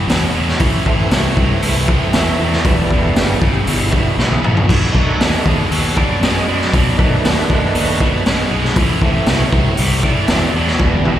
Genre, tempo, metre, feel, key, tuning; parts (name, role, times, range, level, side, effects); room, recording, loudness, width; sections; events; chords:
blues rock power trio and southern rock; 118 BPM; 4/4; straight; A4 = 439 Hz
distorted electric guitar; riff; 0.0-11.2 s; E2 to G#3; -18 LUFS; equal; overdrive, slapback echo
fuzz fingered electric bass; bass; 0.1-11.2 s; E1 to F#2; -19 LUFS; left 1 dB; overdrive
raw garage drum kit; drums; 0.1-11.2 s; crash cymbal, hi-hat, kick drum, snare drum, toms; -16 LUFS; equal
overdriven tonewheel organ; sustained chords; 0.9-11.2 s; D#3 to E5; -22 LUFS; right 4 dB; slow rotary speaker, chorus vibrato
small room reverb; live gig heard through the venue's PA, recital hall reverb; -12 LUFS; side -11 dB against mid
0.0-11.2 A section
tonewheel organ solo 0.0-11.2; drum fill 4.2-4.7, 10.8-11.2
0.0 Am; 2.7 Em; 4.7 B7#9; 8.8 Am